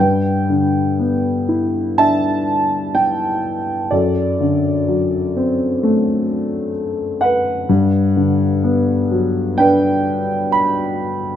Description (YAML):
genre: classical, lyrical solo piano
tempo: 63 BPM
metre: 4/4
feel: rubato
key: unclear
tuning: A4 = 435 Hz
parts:
  - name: dark grand piano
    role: solo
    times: 0.0-11.4 s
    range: F#2 to B5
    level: -15 LUFS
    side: left 1 dB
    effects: none
room: light reverb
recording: close, detailed microphones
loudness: -15 LUFS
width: side -10 dB against mid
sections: 0.0-11.4 A section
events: none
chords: 0.0 G6; 3.9 D7/F#; 7.7 Gmaj7